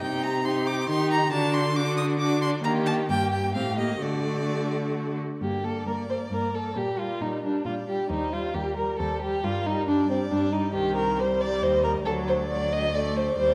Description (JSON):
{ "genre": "quick classical-period movement for string quartet", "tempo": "135 BPM", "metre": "3/4", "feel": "rubato", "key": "G minor", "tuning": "A4 = 439 Hz", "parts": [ { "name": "rich violin", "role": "melody", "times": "0.0-13.5 s", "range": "Bb4 to Eb6", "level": "-35 LUFS", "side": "equal", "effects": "none" }, { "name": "warm violin", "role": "second line", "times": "0.0-13.5 s", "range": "C4 to Eb5", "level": "-30 LUFS", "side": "equal", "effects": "none" }, { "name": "rich viola", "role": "accompaniment", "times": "0.0-13.5 s", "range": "Eb3 to Eb4", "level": "-33 LUFS", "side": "equal", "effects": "none" }, { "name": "warm cello", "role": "bass", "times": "0.0-13.5 s", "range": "C2 to Eb3", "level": "-33 LUFS", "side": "equal", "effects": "none" } ], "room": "wet concert hall reverb, RT60 2.0 s", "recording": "none", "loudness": "-26 LUFS", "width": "mono", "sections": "0.0-5.4 A section; 5.4-13.5 A section", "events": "none", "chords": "0.0 Cm; 1.3 D; 2.6 Eb; 3.6 Am7b5; 4.0 D; 5.4 Gm; 6.8 Gm/Bb; 8.1 Eb; 9.4 Gm; 10.8 Cm; 12.1 D" }